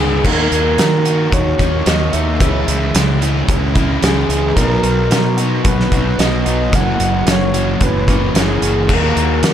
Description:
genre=rock, shoegaze and dream pop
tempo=111 BPM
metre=4/4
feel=straight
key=unclear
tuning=A4 = 441 Hz
part: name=reedy FM lead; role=melody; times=0.0-9.5 s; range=G#4 to F#5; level=-21 LUFS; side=equal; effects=chorus, tremolo, analog delay
part: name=overdriven semi-hollow guitar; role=riff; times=0.0-9.5 s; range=F#2 to G#4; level=-18 LUFS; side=right 1 dB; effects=lush chorus
part: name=fuzz fingered electric bass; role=bass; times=0.0-9.5 s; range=F#1 to D#3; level=-18 LUFS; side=equal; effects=overdrive
part: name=loose indie drum kit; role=drums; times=0.2-9.5 s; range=crash cymbal, hi-hat, kick drum, snare drum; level=-17 LUFS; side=equal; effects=none
room=light reverb, studio ambience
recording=none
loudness=-12 LUFS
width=side -10 dB against mid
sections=0.2-9.5 A section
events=none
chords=0.2 D#m7; 2.4 C#m; 4.6 B; 6.7 F#9sus4; 8.9 D#m

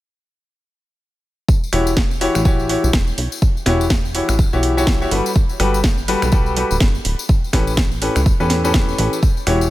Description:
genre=piano house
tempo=124 BPM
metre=4/4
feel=swing 58% on 16ths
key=E dorian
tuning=A4 = 441 Hz
part: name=electronic kick drum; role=drums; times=1.5-9.3 s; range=none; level=-16 LUFS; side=equal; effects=none
part: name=tambourine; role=percussion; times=1.5-9.7 s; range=none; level=-31 LUFS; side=left 6 dB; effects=none
part: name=clear concert grand piano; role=riff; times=1.7-9.6 s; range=A2 to C#5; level=-20 LUFS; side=left 2 dB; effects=sidechain pumping, tape echo
part: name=plucky analog bass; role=bass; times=1.7-9.7 s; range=D1 to E2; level=-20 LUFS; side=equal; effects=sidechain pumping
part: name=house drum kit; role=drums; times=1.7-9.6 s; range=finger snaps, hi-hat, snare drum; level=-23 LUFS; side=right 1 dB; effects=none
room=digital ambience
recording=none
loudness=-15 LUFS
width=side -16 dB against mid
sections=1.5-9.7 A section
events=none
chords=1.5 Em69; 5.1 Gmaj9; 7.3 A9

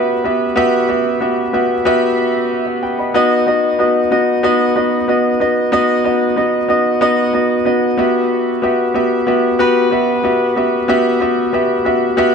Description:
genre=pop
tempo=93 BPM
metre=4/4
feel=straight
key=unclear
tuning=A4 = 435 Hz
part: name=clear grand piano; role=solo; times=0.0-12.3 s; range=B3 to B5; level=-13 LUFS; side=equal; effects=tape echo
room=moderate lush hall reverb, RT60 3.0 s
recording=nothing above 10.3 kHz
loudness=-13 LUFS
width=side -6 dB against mid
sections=0.0-12.3 A section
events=grand piano fill 12.2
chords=0.0 Emadd9; 3.1 B; 8.0 Emadd9

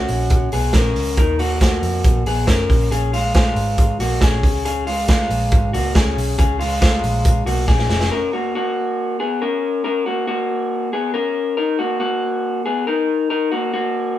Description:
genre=jangly indie pop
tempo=139 BPM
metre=4/4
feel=straight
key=F# major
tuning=A4 = 440 Hz
part: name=electric guitar through a small old amp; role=arpeggios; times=0.0-14.2 s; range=G#3 to A#4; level=-20 LUFS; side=left 2 dB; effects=none
part: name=vintage muted picked electric bass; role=bass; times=0.0-8.1 s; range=E#1 to E#2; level=-22 LUFS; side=right 1 dB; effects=none
part: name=raw garage drum kit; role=drums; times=0.1-8.1 s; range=hi-hat, kick drum, snare drum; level=-17 LUFS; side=equal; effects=none
room=moderate large studio reverb, RT60 0.9 s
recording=band playing live in one room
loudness=-16 LUFS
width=side -13 dB against mid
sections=0.0-8.1 A section; 8.1-14.2 B section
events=drum fill 7.7-8.1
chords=0.0 F#sus2; 1.2 D#madd9; 2.7 A#m7; 4.4 C#; 8.1 F#; 11.6 Bmaj7 (rootless)

